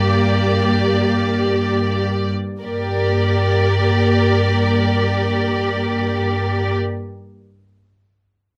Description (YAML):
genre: classical, slow romantic movement for string orchestra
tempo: free time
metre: none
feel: none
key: G minor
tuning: A4 = 440 Hz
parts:
  - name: warm studio violin section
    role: melody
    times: 0.0-6.8 s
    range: D5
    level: -27 LUFS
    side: equal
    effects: none
  - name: warm studio violin section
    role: second line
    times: 0.0-6.7 s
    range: Bb3 to Bb4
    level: -28 LUFS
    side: equal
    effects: none
  - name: warm studio viola section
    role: accompaniment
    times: 0.0-6.8 s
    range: Bb3 to G4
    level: -26 LUFS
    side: equal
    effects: none
  - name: warm studio cello section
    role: bass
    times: 0.0-6.8 s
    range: G4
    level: -25 LUFS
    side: equal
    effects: none
  - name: warm studio double bass section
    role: bass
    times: 0.0-6.8 s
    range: G2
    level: -22 LUFS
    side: equal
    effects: none
room: light reverb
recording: none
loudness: -18 LUFS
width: mono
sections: 0.0-2.6 A section; 2.6-6.0 B section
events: slowing down 0.0-2.6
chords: 0.0 Gm